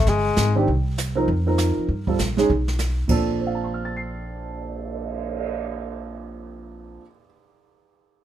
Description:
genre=jazz, small-group swing and bop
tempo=199 BPM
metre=4/4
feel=swing 61% on 8ths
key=Bb major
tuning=A4 = 439 Hz
part: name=breathy tenor saxophone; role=melody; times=0.0-0.6 s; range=Ab3 to A3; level=-22 LUFS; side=left 5 dB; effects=none
part: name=upright bass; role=bass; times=0.0-7.0 s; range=G1 to G2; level=-25 LUFS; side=equal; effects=none
part: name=jazz brush drum kit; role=drums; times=0.1-5.4 s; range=brushed snare drum, crash cymbal, cymbal swell, hi-hat, kick drum, snare drum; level=-27 LUFS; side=right 2 dB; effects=none
part: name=warm upright piano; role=accompaniment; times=0.6-7.3 s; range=Bb2 to C7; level=-25 LUFS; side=right 3 dB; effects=none
room=light reverb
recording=minimal, uncompressed stereo recording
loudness=-21 LUFS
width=side -11 dB against mid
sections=0.7-3.1 A section; 3.1-5.5 B section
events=none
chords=0.1 G5; 0.7 Cm7; 1.3 F7sus4; 1.9 G9sus4; 2.5 N.C.; 3.1 Bbmaj7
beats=0.07 0.38 | 0.68 0.98 1.28 1.58 | 1.89 2.19 2.49 2.79 | 3.09 3.40 3.70 4.00 | 4.30 4.60 4.91 5.21

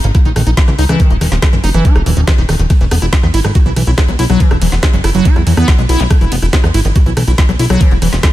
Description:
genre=psychedelic trance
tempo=141 BPM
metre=4/4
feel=straight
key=unclear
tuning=A4 = 441 Hz
part: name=liquid acid bass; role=riff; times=0.0-8.3 s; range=Db3 to Gb4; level=-16 LUFS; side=equal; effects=chorus, auto-pan, cassette tape, sidechain pumping, tape echo
part: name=plucky analog bass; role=bass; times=0.0-8.2 s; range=Eb1 to E2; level=-13 LUFS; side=equal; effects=tube saturation
part: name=drum and bass drum kit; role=drums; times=0.0-8.3 s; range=hi-hat, ride cymbal, rim click, snare drum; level=-20 LUFS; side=equal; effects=overdrive, small room ambience
part: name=electronic kick drum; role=drums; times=0.1-8.3 s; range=none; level=-10 LUFS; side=equal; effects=overdrive, small room ambience
room=light reverb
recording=none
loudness=-9 LUFS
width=side -15 dB against mid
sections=0.0-8.3 A section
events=none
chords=0.0 Eb5; 2.7 E5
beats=0.15 0.57 | 1.00 1.42 1.85 2.27 | 2.70 3.13 3.55 3.98 | 4.40 4.83 5.25 5.68 | 6.11 6.53 6.96 7.38 | 7.81 8.23

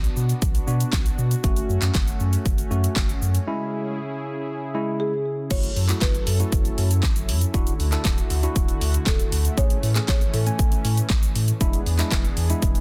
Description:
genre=dance-pop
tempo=118 BPM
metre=4/4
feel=straight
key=F# minor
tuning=A4 = 439 Hz
part: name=warm analog pad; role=sustained chords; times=0.0-12.8 s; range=C#3 to A4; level=-35 LUFS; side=equal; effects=chorus, sidechain pumping
part: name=saturated sub bass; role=bass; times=0.0-12.8 s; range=D1 to B2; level=-25 LUFS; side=equal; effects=sidechain pumping
part: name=pop drum kit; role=drums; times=0.0-12.8 s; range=crash cymbal, handclaps, hi-hat, kick drum, shaker, snare drum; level=-25 LUFS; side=equal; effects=none
part: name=tine electric piano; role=accompaniment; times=0.7-12.8 s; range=G#3 to G#5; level=-33 LUFS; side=equal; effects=sidechain pumping
part: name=marimba with medium mallets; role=melody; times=5.0-10.8 s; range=G#4 to C#5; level=-33 LUFS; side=equal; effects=none
room=digital ambience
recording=dense, heavily limited modern master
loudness=-22 LUFS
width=mono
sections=0.0-5.5 A section; 5.5-12.8 B section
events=break 3.5-5.5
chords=0.0 Bm; 1.4 F#m; 3.5 C#m; 5.5 F#m7; 7.5 Dadd9; 9.6 Amaj7; 11.6 E7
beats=0.42 0.93 | 1.44 1.95 2.46 2.96 | 3.47 3.98 4.49 5.00 | 5.51 6.01 6.52 7.03 | 7.54 8.05 8.56 9.07 | 9.57 10.08 10.59 11.10 | 11.61 12.12 12.62

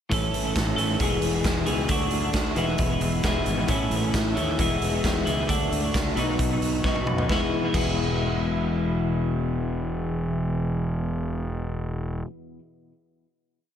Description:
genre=indie rock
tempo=134 BPM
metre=4/4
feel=straight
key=E major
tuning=A4 = 440 Hz
part: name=twelve-string electric guitar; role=riff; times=0.1-12.3 s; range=E2 to A4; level=-25 LUFS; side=left 1 dB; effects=vibrato effect, analog delay
part: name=fuzz fingered electric bass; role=bass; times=0.1-12.2 s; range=E1 to F#2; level=-30 LUFS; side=equal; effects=overdrive
part: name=raw garage drum kit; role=drums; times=0.1-7.9 s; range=crash cymbal, hi-hat, kick drum, snare drum, toms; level=-27 LUFS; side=equal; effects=analog delay
room=small room ambience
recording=echo-heavy mix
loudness=-22 LUFS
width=side -9 dB against mid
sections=0.1-7.3 pre-chorus; 7.3-10.8 final chord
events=drum fill 6.8-7.3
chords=0.1 A; 1.0 E; 1.9 D; 2.6 E; 3.7 A; 4.6 E; 5.5 D; 6.2 B; 7.3 E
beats=| 0.11 0.55 1.00 1.44 | 1.89 2.34 2.79 3.23 | 3.68 4.13 4.58 5.04 | 5.49 5.94 6.39 6.84 | 7.29 7.74 8.18 8.63 | 9.07 9.52 9.96 10.40

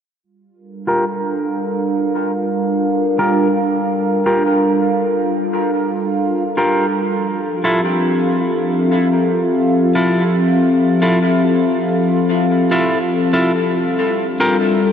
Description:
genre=ambient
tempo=71 BPM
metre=4/4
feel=straight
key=G dorian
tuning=A4 = 444 Hz
part: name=warbly tape-like pad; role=sustained chords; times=0.8-14.9 s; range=F3 to F5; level=-16 LUFS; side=equal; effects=chorus, built-in reverb
part: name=bubbling stepped-filter texture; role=texture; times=0.2-14.9 s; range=F4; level=-26 LUFS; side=right 1 dB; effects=chorus, built-in reverb
part: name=clean electric guitar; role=stabs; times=0.9-14.6 s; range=E4 to Bb4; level=-20 LUFS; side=equal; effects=low-pass filter, dub echo
room=wet huge ambient reverb, RT60 7.3 s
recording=dreamy mix soaked in reverb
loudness=-14 LUFS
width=side -8 dB against mid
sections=0.2-14.9 A section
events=filter sweep on clean electric guitar 0.2-14.9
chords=0.2 Gm7; 7.0 Fmaj7; 13.8 Gm7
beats=| 0.24 1.08 1.93 2.77 | 3.62 4.46 5.31 6.15 | 7.00 7.84 8.69 9.53 | 10.38 11.22 12.07 12.91 | 13.76 14.60

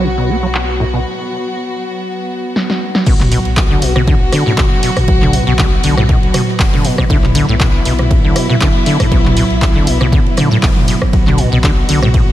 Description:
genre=acid house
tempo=119 BPM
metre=4/4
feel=swing 54% on 16ths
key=B minor pentatonic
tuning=A4 = 441 Hz
part: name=warm chamber string section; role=sustained chords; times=0.0-12.3 s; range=F#3 to F#4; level=-18 LUFS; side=equal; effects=sidechain pumping
part: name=acid bass, saw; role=riff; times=0.0-12.2 s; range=A2 to B3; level=-16 LUFS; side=equal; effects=tube saturation, analog chorus, sidechain pumping, diffuse ambient delay
part: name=warm sub bass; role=bass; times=0.0-12.3 s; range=F#1 to B1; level=-19 LUFS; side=equal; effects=sidechain pumping
part: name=airy breathy pad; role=texture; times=0.0-1.0 s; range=B4 to B5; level=-32 LUFS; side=left 1 dB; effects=none
part: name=punchy analog drum machine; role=drums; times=0.5-12.2 s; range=crash cymbal, handclaps, hi-hat, ride cymbal, rim click, snare drum, toms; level=-18 LUFS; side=equal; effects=low-pass filter on snare, low-pass filter on cymbals, low-pass filter on toms, low-pass filter on hats, low-pass filter on room
part: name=electronic kick drum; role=drums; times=3.1-12.2 s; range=none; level=-13 LUFS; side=equal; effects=none
part: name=swinging big-band drum kit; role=drums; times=3.1-12.3 s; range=hi-hat, ride cymbal, snare drum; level=-31 LUFS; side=right 2 dB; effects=none
room=light reverb, studio reverb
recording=none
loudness=-10 LUFS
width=side -13 dB against mid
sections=0.0-3.1 A section; 3.1-12.3 B section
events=filter sweep on string section 0.0-3.1; break 1.0-3.1; drum fill 2.6-3.1; drop 3.1-12.3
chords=0.0 B5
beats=0.04 0.54 | 1.05 1.55 2.06 2.56 | 3.06 3.57 4.07 4.58 | 5.08 5.59 6.09 6.59 | 7.10 7.60 8.11 8.61 | 9.12 9.62 10.12 10.63 | 11.13 11.64 12.14

